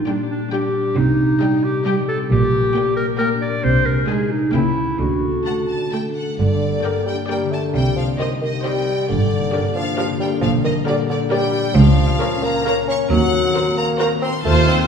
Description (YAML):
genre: cinematic, playful, whimsical film cue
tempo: 134 BPM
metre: 3/4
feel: straight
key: G minor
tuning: A4 = 438 Hz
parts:
  - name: clear clarinet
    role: second line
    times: 0.0-5.9 s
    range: D4 to D5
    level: -20 LUFS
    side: equal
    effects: none
  - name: concert harp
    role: arpeggios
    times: 0.0-14.9 s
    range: G2 to A5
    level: -23 LUFS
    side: left 4 dB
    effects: none
  - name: rich studio violin section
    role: melody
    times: 0.1-14.9 s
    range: C5 to A5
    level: -30 LUFS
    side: left 6 dB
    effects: none
  - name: rich studio violin section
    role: second line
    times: 0.1-14.8 s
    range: D5 to Db6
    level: -28 LUFS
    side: left 2 dB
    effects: none
  - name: rich studio viola section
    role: accompaniment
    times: 0.1-14.9 s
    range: G3 to D5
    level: -27 LUFS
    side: right 2 dB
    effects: none
  - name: bright studio cello section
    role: bass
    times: 1.0-14.9 s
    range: Db2 to D3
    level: -21 LUFS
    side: right 2 dB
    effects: none
  - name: rich studio double bass section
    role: bass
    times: 1.0-14.9 s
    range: G1 to Eb2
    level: -22 LUFS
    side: right 2 dB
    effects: none
  - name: mellow bassoon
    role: accompaniment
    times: 6.4-14.9 s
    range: D3 to Db4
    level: -21 LUFS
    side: left 1 dB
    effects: none
room: wet scoring stage reverb, RT60 2.0 s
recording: heard from further back in the room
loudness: -16 LUFS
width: side -6 dB against mid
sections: 0.0-6.4 A section; 6.4-14.9 A section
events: none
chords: 0.0 Gm/Bb; 1.0 Cm; 2.3 Gm/Bb; 3.6 Ab/C; 4.5 C#dim7; 5.0 D; 6.4 Gm; 7.7 Cm; 9.1 Gm; 10.4 Gm/Bb; 11.8 Bbm/Db; 13.1 Cm7b5/Eb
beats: 0.08 0.52 | 0.97 1.41 1.86 | 2.30 2.75 3.19 | 3.64 4.08 4.53 | 5.00 5.46 5.92 | 6.39 6.84 7.29 | 7.75 8.19 8.64 | 9.09 9.53 9.98 | 10.43 10.87 11.32 | 11.76 12.21 12.66 | 13.10 13.55 14.00 | 14.45